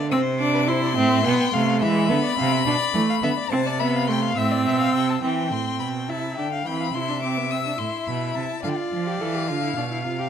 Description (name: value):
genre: classical, baroque-style fugue for string quartet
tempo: 71 BPM (dotted quarters)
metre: 12/8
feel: straight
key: unclear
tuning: A4 = 440 Hz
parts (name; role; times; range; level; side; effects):
- warm violin; second line; 0.0-10.3 s; B4 to A5; -28 LUFS; left 4 dB; none
- rich cello; bass; 0.0-10.3 s; A2 to F3; -26 LUFS; right 4 dB; none
- rich violin; melody; 0.1-10.3 s; F5 to E6; -27 LUFS; left 10 dB; none
- warm viola; accompaniment; 0.1-10.2 s; G#3 to A4; -24 LUFS; right 2 dB; none
room: moderate scoring stage reverb, RT60 1.7 s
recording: none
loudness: -20 LUFS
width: side -8 dB against mid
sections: 0.0-5.2 A section; 5.2-10.3 B section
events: none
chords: 0.0 Am; 1.8 E7; 3.5 Am; 8.6 Dm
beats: 0.12 0.97 | 1.82 2.66 3.51 4.37 | 5.23 6.09 6.94 7.79 | 8.64 9.49